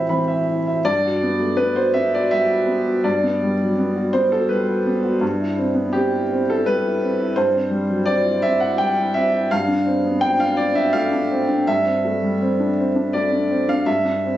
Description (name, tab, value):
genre	neoclassical minimalist piano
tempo	83 BPM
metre	3/4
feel	rubato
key	G major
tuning	A4 = 440 Hz
part	warm upright piano	solo	0.0-14.4 s	G2 to B5	-17 LUFS	equal	none
room	light reverb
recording	recorded on a phone in the room, studio reverb, nothing above 7.8 kHz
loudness	-17 LUFS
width	side -13 dB against mid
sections	0.9-14.4 A section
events	none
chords	0.0 Amadd9; 0.9 Gmaj7; 9.5 F6/G; 13.9 D7(no3)/G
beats	0.09 | 0.85 1.59 2.32 | 3.04 3.77 4.49 | 5.22 5.93 6.65 | 7.36 8.07 8.78 | 9.50 10.22 10.94 | 11.67 12.40 13.13 | 13.87